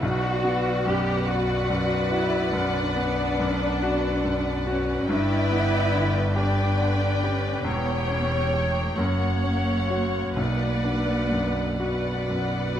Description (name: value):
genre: classical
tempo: 42-48 BPM (dotted quarters)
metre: 12/8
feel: rubato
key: B minor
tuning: A4 = 440 Hz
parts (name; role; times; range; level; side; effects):
- clear baby grand piano; melody; 0.0-12.8 s; B1 to C#5; -26 LUFS; left 1 dB; none
- muted symphonic violin section; melody; 0.0-12.8 s; F#5 to G5; -34 LUFS; left 3 dB; none
- muted symphonic violin section; second line; 0.0-12.8 s; C#5 to D5; -34 LUFS; left 3 dB; none
- muted symphonic viola section; accompaniment; 0.0-12.8 s; B4 to C#5; -33 LUFS; right 2 dB; none
- dark French horn section; sustained chords; 0.0-12.8 s; F#4 to D5; -33 LUFS; left 4 dB; none
- muted symphonic cello section; bass; 0.0-12.8 s; A3 to G4; -29 LUFS; right 2 dB; none
- muted symphonic double bass section; bass; 0.0-12.8 s; E1 to B1; -29 LUFS; right 1 dB; none
room: light reverb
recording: close, detailed microphones, vinyl crackle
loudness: -22 LUFS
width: side -10 dB against mid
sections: 0.0-12.8 A section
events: none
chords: 0.0 Bm; 5.1 G; 7.7 C#dim/E; 9.0 F#; 10.4 Bm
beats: | 0.02 1.28 2.53 3.83 | 5.10 6.37 7.66 8.98 | 10.38 11.81